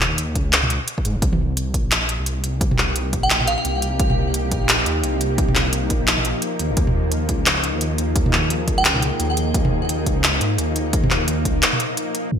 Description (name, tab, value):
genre	half-time drum and bass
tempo	173 BPM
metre	4/4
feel	swing 60% on 16ths, half-time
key	unclear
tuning	A4 = 440 Hz
part	dark detuned saw bass	bass	0.0-11.6 s	Eb1 to Ab2	-23 LUFS	equal	none
part	industrial drum kit	drums	0.0-12.2 s	handclaps, hi-hat, toms	-20 LUFS	equal	gated reverb
part	electronic kick drum	drums	0.4-11.5 s	none	-22 LUFS	equal	none
part	bowed-like drone	sustained chords	2.2-12.4 s	F3 to Ab4	-25 LUFS	equal	built-in reverb, vintage 12-bit sampler grit, sidechain pumping
part	glassy synth bell	melody	3.2-3.6, 8.8-9.0 s	F5 to G5	-25 LUFS	right 1 dB	chorus, tremolo, digital delay
part	impact	sound effects	12.3-12.4 s	none	-20 LUFS	equal	none
room	moderate lush hall reverb, RT60 2.0 s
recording	bright 1980s-style digital production, low-pass filter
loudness	-17 LUFS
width	side -8 dB against mid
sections	0.0-12.3 A section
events	drop 0.0-12.3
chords	0.0 Ebsus4; 1.2 Cm; 6.8 Ebsus4